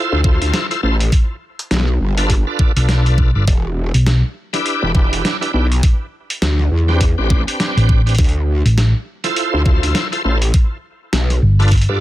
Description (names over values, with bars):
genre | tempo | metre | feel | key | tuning
glitch hop | 102 BPM | 4/4 | swing 59% on 16ths | D dorian | A4 = 441 Hz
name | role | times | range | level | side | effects
bright tonewheel organ | stabs | 0.0-12.0 s | C4 to C5 | -21 LUFS | equal | overdrive, chorus vibrato, slow rotary speaker, sidechain pumping, tape echo
growl bass | bass | 0.1-12.0 s | E1 to G2 | -16 LUFS | equal | chorus, tube saturation
electronic kick drum | drums | 0.2-11.9 s | none | -14 LUFS | equal | none
boom bap sampler-style drum kit | drums | 0.4-11.9 s | hi-hat, snare drum | -22 LUFS | equal | none
hollow-body short-scale fingered electric bass | bass | 2.8-4.2, 7.8-11.9 s | G1 to B1 | -12 LUFS | equal | tube saturation
room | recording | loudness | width
little or no reverb | none | -13 LUFS | side -15 dB against mid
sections
0.0-12.0 A section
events
none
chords
0.0 Dm7; 1.1 G7; 3.5 Em7; 5.8 Am11; 8.2 Dm7; 10.5 G7